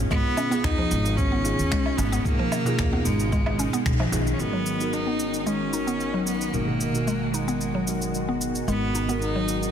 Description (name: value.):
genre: organic downtempo.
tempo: 112 BPM.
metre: 4/4.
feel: straight.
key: G# dorian.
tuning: A4 = 439 Hz.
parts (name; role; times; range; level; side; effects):
muted felt-like synth keys; accompaniment; 0.0-9.7 s; B2 to A#4; -31 LUFS; right 2 dB; chorus, sidechain pumping, digital delay, shimmer reverb.
bowed-like drone; sustained chords; 0.0-9.7 s; D#3 to F#4; -32 LUFS; equal; built-in reverb, phaser, sidechain pumping, shimmer reverb.
mallet-like synth pluck; arpeggios; 0.0-9.7 s; B2 to D#4; -29 LUFS; equal; chorus, vintage 12-bit sampler grit, digital delay, shimmer reverb.
upright bass; bass; 0.0-9.7 s; G#1 to D#2; -29 LUFS; equal; none.
rich cello; melody; 0.1-9.7 s; G#3 to D#4; -28 LUFS; equal; digital delay, shimmer reverb.
electronic cabasa, woodblock and finger snaps; drums; 0.1-9.7 s; none; -33 LUFS; equal; overdrive, soft clipping on snare.
electronic kick drum; drums; 0.1-4.0 s; none; -26 LUFS; equal; none.
darbuka; percussion; 0.5-4.4 s; none; -34 LUFS; right 2 dB; none.
room: moderate lush hall reverb, RT60 2.3 s.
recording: dense, heavily limited modern master.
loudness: -22 LUFS.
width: side -8 dB against mid.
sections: 0.0-4.4 A section; 4.4-9.7 B section.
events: band accent 3.9; filter sweep on synth pluck 4.4-9.7.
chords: 0.0 C#7/G#; 4.4 G#m7.